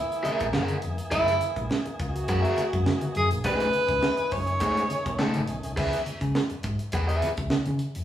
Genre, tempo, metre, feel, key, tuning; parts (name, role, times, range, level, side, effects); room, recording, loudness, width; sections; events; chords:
funk; 103 BPM; 4/4; straight; C# dorian; A4 = 440 Hz
breathy tenor saxophone; melody; 0.0-5.5 s; E4 to C#5; -26 LUFS; right 1 dB
tonewheel organ; sustained chords; 0.0-5.8 s; D#3 to G#4; -37 LUFS; right 1 dB; overdrive
crisp fusion drum kit; drums; 0.1-8.0 s; crash cymbal, hi-hat, kick drum, snare drum; -31 LUFS; right 2 dB
overdriven electric guitar; accompaniment; 0.2-7.3 s; A3 to F#5; -28 LUFS; left 1 dB
congas; percussion; 0.2-7.8 s; -34 LUFS; left 1 dB
hollow-body short-scale fingered electric bass; bass; 0.3-8.0 s; E#1 to C#3; -30 LUFS; equal
wet studio reverb, RT60 0.5 s; band playing live in one room, studio reverb; -24 LUFS; side -11 dB against mid
0.0-5.8 A section; 5.8-8.0 B section
0.0 F#9; 3.5 B13; 5.8 C#m7